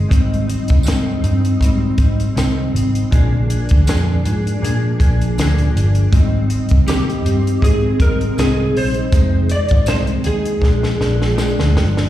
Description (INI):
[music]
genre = indie pop, bedroom pop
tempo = 80 BPM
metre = 4/4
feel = swing 55% on 16ths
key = Ab lydian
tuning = A4 = 440 Hz
[part]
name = mellow electric guitar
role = accompaniment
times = 0.0-12.1 s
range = F2 to Ab4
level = -20 LUFS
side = left 1 dB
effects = ensemble chorus, warbly pitch drift, plate reverb, slapback echo
[part]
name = vintage muted picked electric bass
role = bass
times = 0.0-12.0 s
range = F1 to Bb2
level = -17 LUFS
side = equal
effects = none
[part]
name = compact cocktail drum kit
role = drums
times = 0.1-12.1 s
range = hi-hat, kick drum, snare drum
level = -17 LUFS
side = equal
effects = none
[part]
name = tambourine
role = percussion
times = 0.8-11.6 s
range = none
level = -36 LUFS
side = right 7 dB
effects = slapback echo
[part]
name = electric slide guitar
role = melody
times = 6.9-11.7 s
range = G4 to D5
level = -21 LUFS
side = right 1 dB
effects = ensemble chorus, slapback echo, plate reverb
[sound]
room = light reverb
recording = live gig heard through the venue's PA, recital hall reverb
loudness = -13 LUFS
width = side -13 dB against mid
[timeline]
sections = 0.0-12.1 A section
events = drum fill 10.6-12.1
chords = 0.1 Abmaj7; 3.1 Bb7; 6.1 Abmaj7; 9.1 Fm7; 10.6 Bb7